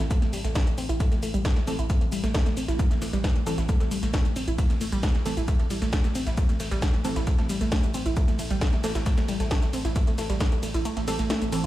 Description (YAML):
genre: driving peak-time techno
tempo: 134 BPM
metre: 4/4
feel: straight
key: A minor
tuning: A4 = 440 Hz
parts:
  - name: warbly dusty pluck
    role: riff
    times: 0.0-11.7 s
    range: G3 to E4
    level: -30 LUFS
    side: equal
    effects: chorus, tube saturation, sidechain pumping, tape echo
  - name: saturated sub bass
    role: bass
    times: 0.0-11.7 s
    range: A1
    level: -30 LUFS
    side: equal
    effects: tube saturation, sidechain pumping, low-pass filter
  - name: electronic snare drum and shaker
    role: drums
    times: 0.0-11.6 s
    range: none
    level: -41 LUFS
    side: equal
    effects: high-pass filter on snare, high-pass filter on perc, high-pass filter on room
  - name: techno drum kit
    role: drums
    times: 0.0-11.7 s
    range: hi-hat, ride cymbal, shaker, snare drum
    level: -34 LUFS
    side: equal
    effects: sidechain pumping on hats, sidechain pumping on perc, sidechain pumping on cymbals
  - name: electronic kick drum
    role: drums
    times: 0.1-10.5 s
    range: none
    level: -24 LUFS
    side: equal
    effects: none
  - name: wavetable chord stab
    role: stabs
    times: 1.7-11.7 s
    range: E3 to A4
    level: -35 LUFS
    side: right 1 dB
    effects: sidechain pumping, tape echo
room: digital ambience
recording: played on a big sound system in a bare room, stone room reverb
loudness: -23 LUFS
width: side -15 dB against mid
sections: 0.0-11.7 A section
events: kick drops out 10.9-11.7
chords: none